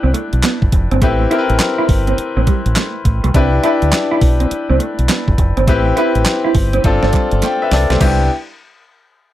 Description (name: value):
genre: R&B, new jack swing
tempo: 103 BPM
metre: 4/4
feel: swing 64% on 16ths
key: C major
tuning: A4 = 440 Hz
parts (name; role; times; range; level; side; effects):
- bright concert grand piano; accompaniment; 0.0-8.3 s; B3 to G5; -18 LUFS; left 3 dB; none
- mellow electric guitar; riff; 0.0-8.2 s; G3 to E4; -20 LUFS; right 4 dB; lush chorus
- deep dub fingered electric bass; bass; 0.0-8.3 s; F1 to D2; -15 LUFS; equal; none
- crisp 8-bit digital drum machine; drums; 0.1-8.2 s; crash cymbal, handclaps, hi-hat, kick drum, snare drum; -16 LUFS; equal; overdrive
- group handclap; percussion; 0.4-8.3 s; none; -28 LUFS; right 6 dB; none
room: light reverb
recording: none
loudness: -12 LUFS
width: side -13 dB against mid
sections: 0.0-8.0 A section; 8.0-9.3 B section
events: drum fill 7.4-8.0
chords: 0.0 Cmaj9; 1.0 Am9; 3.3 Cmaj9; 5.7 Am9; 6.8 G7sus4; 8.0 Cmaj9